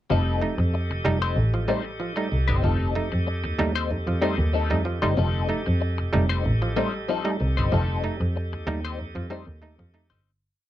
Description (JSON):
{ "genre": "funk", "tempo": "94 BPM", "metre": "4/4", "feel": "straight", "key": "F mixolydian", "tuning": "A4 = 438 Hz", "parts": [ { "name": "clean electric guitar", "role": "accompaniment", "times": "0.1-10.3 s", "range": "G3 to C5", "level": "-28 LUFS", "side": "left 8 dB", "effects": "wah" }, { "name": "bright tonewheel organ", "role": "sustained chords", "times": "0.1-10.2 s", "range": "G4 to Eb5", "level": "-35 LUFS", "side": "right 1 dB", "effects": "slow rotary speaker" }, { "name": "muted clav", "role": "stabs", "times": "0.1-10.1 s", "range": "F3 to Eb4", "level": "-28 LUFS", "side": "right 3 dB", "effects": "none" }, { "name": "rich double bass", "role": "bass", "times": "0.1-10.2 s", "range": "F1 to F2", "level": "-24 LUFS", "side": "equal", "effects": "none" } ], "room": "light reverb", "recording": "none", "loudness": "-22 LUFS", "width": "side -13 dB against mid", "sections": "0.1-10.3 groove", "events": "fade-out 7.7-10.3", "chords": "0.1 F9", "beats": "| 0.10 0.73 1.37 2.00 | 2.63 3.27 3.90 4.54 | 5.17 5.81 6.45 7.08 | 7.71 8.35 8.98 9.62" }